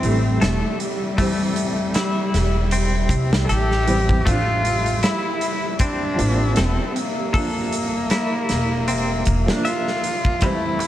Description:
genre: trip hop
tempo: 78 BPM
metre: 4/4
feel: swing 56% on 16ths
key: unclear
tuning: A4 = 437 Hz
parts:
  - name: warm cello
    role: melody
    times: 0.0-10.9 s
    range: G3 to A4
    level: -24 LUFS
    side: equal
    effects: tape echo
  - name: felt-muted upright piano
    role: accompaniment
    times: 0.0-10.9 s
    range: E3 to D4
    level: -28 LUFS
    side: right 2 dB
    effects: tremolo
  - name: deep dark ambient pad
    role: sustained chords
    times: 0.0-10.9 s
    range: G3 to E5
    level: -29 LUFS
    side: left 1 dB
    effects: chorus, built-in reverb
  - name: clean electric guitar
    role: arpeggios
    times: 0.0-10.9 s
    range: A3 to E5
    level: -28 LUFS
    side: left 3 dB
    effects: tremolo, tape echo
  - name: upright bass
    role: bass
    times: 0.0-9.5 s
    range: E1 to C2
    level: -21 LUFS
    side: equal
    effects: none
  - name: huge arena drum kit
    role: drums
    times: 0.0-10.9 s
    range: hi-hat, kick drum, snare drum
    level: -24 LUFS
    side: equal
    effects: vintage 12-bit sampler grit
  - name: darbuka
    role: percussion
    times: 10.4-10.9 s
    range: none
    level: -34 LUFS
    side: right 3 dB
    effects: none
room: light reverb, small room ambience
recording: vinyl crackle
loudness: -18 LUFS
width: side -13 dB against mid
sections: 0.0-10.9 A section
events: none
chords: 0.0 Am7; 4.3 Bb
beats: 0.42 | 1.19 1.95 2.72 3.49 | 4.26 5.03 5.80 6.57 | 7.34 8.11 8.88 9.65 | 10.42

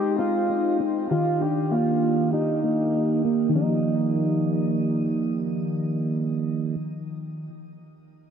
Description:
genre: dream pop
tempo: 98 BPM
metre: 4/4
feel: straight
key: Eb major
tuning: A4 = 440 Hz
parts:
  - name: overdriven slide guitar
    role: melody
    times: 0.0-6.8 s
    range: Eb4 to G4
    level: -27 LUFS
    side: right 1 dB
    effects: low-pass filter, shimmer reverb, analog delay
  - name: mellow tonewheel organ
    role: sustained chords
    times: 0.0-6.8 s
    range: Eb3 to D6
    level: -30 LUFS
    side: right 4 dB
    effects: slow rotary speaker, low-pass filter
  - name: mellow electric guitar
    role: arpeggios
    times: 0.0-7.6 s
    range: Eb3 to G4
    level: -24 LUFS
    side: equal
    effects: analog chorus, low-pass filter, analog delay
room: wet echo chamber reverb, RT60 2.4 s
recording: echo-heavy mix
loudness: -21 LUFS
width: side -7 dB against mid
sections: 0.0-3.5 A section; 3.5-6.0 B section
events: filter sweep 0.0-3.5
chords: 0.0 Abmaj7; 1.1 Ebmaj9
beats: 0.49 | 1.10 1.71 2.32 2.94 | 3.55 4.16 4.77 5.39

